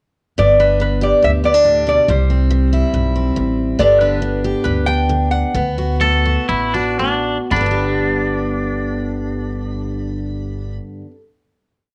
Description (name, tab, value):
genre	honky-tonk and classic country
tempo	112-141 BPM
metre	4/4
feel	straight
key	G major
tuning	A4 = 440 Hz
part	lap resonator guitar	melody	0.4-10.8 s	B4 to B5	-17 LUFS	equal	cassette tape
part	picked steel-string acoustic guitar	accompaniment	0.4-11.2 s	G2 to G4	-23 LUFS	equal	none
part	upright bass	bass	0.4-10.8 s	G1 to D2	-22 LUFS	equal	none
part	twangy electric guitar	second line	6.0-10.8 s	D4 to A4	-22 LUFS	equal	none
room	light reverb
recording	home recording on cassette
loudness	-17 LUFS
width	mono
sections	0.4-7.5 interlude; 7.5-11.8 final chord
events	slowing down 3.8-7.5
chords	0.4 G; 2.1 C; 3.8 G; 5.5 D6; 7.5 G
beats	| 0.38 0.81 1.23 1.66 | 2.09 2.52 2.94 3.37 | 3.79 4.22 4.66 5.10 | 5.55 6.01 6.49 6.99 | 7.51 8.05 8.58 9.12 | 9.65 10.18 10.72